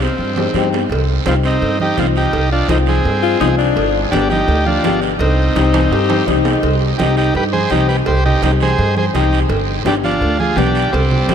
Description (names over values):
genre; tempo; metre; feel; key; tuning
latin, cumbia; 168 BPM; 4/4; straight; C harmonic minor; A4 = 439 Hz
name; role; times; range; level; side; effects
combo organ; melody; 0.0-11.3 s; G3 to C5; -18 LUFS; right 1 dB; diffuse ambient delay
upright bass; bass; 0.0-11.3 s; G1 to G2; -17 LUFS; equal; none
guiro; percussion; 0.0-11.3 s; none; -28 LUFS; right 12 dB; none
timbales and cowbell; percussion; 0.0-11.3 s; none; -26 LUFS; right 6 dB; none
congas; percussion; 0.2-11.3 s; none; -24 LUFS; right 5 dB; none
dark upright piano; accompaniment; 0.4-11.3 s; B3 to G4; -22 LUFS; left 9 dB; wide subtle chorus
breathy alto saxophone; second line; 3.2-6.9 s; D4 to G4; -21 LUFS; left 7 dB; none
room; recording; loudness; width
moderate huge ambient reverb, RT60 6.4 s; dreamy mix soaked in reverb; -13 LUFS; side -8 dB against mid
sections
0.9-11.3 A section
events
drum fill 0.0-0.9, 5.7-6.6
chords
0.0 Cm; 3.8 G7; 5.2 Cm; 9.5 G7